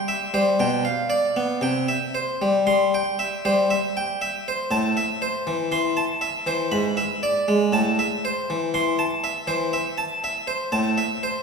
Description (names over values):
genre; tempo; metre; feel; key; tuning
classical, baroque-style suite movement for harpsichord; 59 BPM; 3/4; rubato; C major; A4 = 440 Hz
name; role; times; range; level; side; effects
harpsichord; solo; 0.0-11.4 s; G#2 to C6; -20 LUFS; equal; none
room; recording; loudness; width
wet concert hall reverb, RT60 2.1 s; heard from further back in the room; -20 LUFS; side -5 dB against mid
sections
0.0-11.4 A section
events
none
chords
0.0 C; 0.6 G7/B; 1.6 C; 4.7 Am; 6.7 E7/G#; 7.7 Am